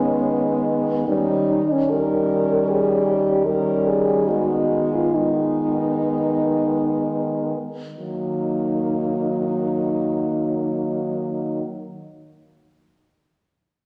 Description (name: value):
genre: classical, lyrical piece for horn quartet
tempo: 56-80 BPM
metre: 4/4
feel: rubato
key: Eb minor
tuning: A4 = 437 Hz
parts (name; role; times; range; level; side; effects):
- mellow French horn; melody; 0.0-11.6 s; Db4 to Bb4; -26 LUFS; equal; none
- warm French horn; second line; 0.0-11.7 s; Bb3 to Db4; -30 LUFS; equal; none
- warm French horn; accompaniment; 0.0-11.6 s; Gb3 to Ab3; -26 LUFS; equal; none
- warm French horn; bass; 0.0-11.6 s; Eb3; -29 LUFS; equal; none
room: wet recital hall reverb, RT60 1.8 s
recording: none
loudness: -21 LUFS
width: mono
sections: 0.0-8.0 A section; 8.0-12.0 B section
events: slowing down 0.0-8.0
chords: 0.0 Abm/Eb; 1.1 Eb7; 4.3 Abm/Eb; 8.0 Ebm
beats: 0.29 | 1.08 1.92 2.69 3.47 | 4.28 5.13 6.01 6.97 | 8.00 9.00 10.02 11.03